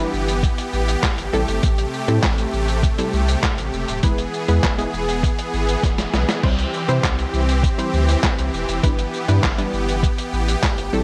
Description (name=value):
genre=dance-pop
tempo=100 BPM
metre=4/4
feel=straight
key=unclear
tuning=A4 = 440 Hz
part: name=unison pluck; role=accompaniment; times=0.0-11.0 s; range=G3 to C5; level=-27 LUFS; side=equal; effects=sidechain pumping
part: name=supersaw chords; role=sustained chords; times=0.0-11.0 s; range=C3 to G#4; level=-26 LUFS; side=equal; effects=sidechain pumping
part: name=warm sub bass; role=bass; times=0.0-11.0 s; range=D1 to C3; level=-24 LUFS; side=equal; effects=sidechain pumping
part: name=lo-fi sampler-style drum kit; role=drums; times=0.1-11.0 s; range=crash cymbal, handclaps, hi-hat, kick drum, shaker, snare drum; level=-23 LUFS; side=equal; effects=none
room=light reverb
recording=none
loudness=-20 LUFS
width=mono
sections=0.0-11.0 A section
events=drum fill 5.8-6.4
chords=0.0 G6; 1.3 Am7; 4.0 E; 6.4 C; 8.8 G6